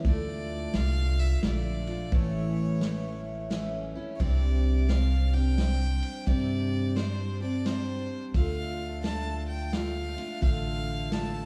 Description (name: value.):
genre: honky-tonk and classic country.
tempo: 87 BPM.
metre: 3/4.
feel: swing 64% on 8ths.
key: D minor.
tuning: A4 = 440 Hz.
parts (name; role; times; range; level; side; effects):
picked steel-string acoustic guitar; accompaniment; 0.0-11.5 s; A2 to G4; -35 LUFS; equal; lush chorus.
upright bass; bass; 0.0-11.5 s; A1 to G2; -31 LUFS; equal; none.
vintage drum kit; drums; 0.0-11.3 s; kick drum, ride cymbal, snare drum; -34 LUFS; equal; none.
clear fiddle; second line; 0.1-11.5 s; C5 to A5; -41 LUFS; equal; none.
room: light reverb, small room ambience.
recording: none.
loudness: -29 LUFS.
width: mono.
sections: 0.1-11.5 A section.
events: fiddle solo 0.1-11.5.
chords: 0.1 Dm; 2.1 A; 4.2 Csus2; 8.3 Dm.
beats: | 0.06 0.74 1.44 | 2.13 2.82 3.51 | 4.20 4.89 5.58 | 6.27 6.96 7.65 | 8.35 9.04 9.73 | 10.42 11.11.